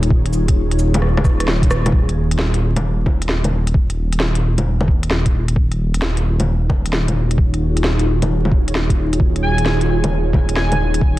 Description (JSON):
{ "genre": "future garage", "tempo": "132 BPM", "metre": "4/4", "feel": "swing 67% on 16ths", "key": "Eb minor", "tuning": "A4 = 440 Hz", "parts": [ { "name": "ethereal airy pad", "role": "sustained chords", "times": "0.0-1.9, 6.6-11.2 s", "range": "Eb3 to Db5", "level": "-24 LUFS", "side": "equal", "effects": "ensemble chorus, built-in reverb, phaser, vintage 12-bit sampler grit, sidechain pumping" }, { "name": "dark detuned saw bass", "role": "bass", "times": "0.0-11.2 s", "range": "Eb1", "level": "-18 LUFS", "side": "equal", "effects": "sidechain pumping" }, { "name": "organic electronic drum kit", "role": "drums", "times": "0.0-11.0 s", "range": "bongos, cabasa, hi-hat, rim click, snare drum", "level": "-21 LUFS", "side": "equal", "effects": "none" }, { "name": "electronic kick drum", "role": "drums", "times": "0.1-11.1 s", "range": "none", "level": "-15 LUFS", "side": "equal", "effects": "none" }, { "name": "airy dreamy lead", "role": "melody", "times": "9.4-10.8 s", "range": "Ab5", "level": "-24 LUFS", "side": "equal", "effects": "chorus, tape echo" } ], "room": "little or no reverb", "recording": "dense, heavily limited modern master, vinyl crackle", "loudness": "-15 LUFS", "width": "side -16 dB against mid", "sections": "0.0-1.9 A section; 1.9-11.2 B section", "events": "drum fill 1.0-1.9", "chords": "0.0 Db/Eb; 1.9 Ebm11; 9.2 Db/Eb" }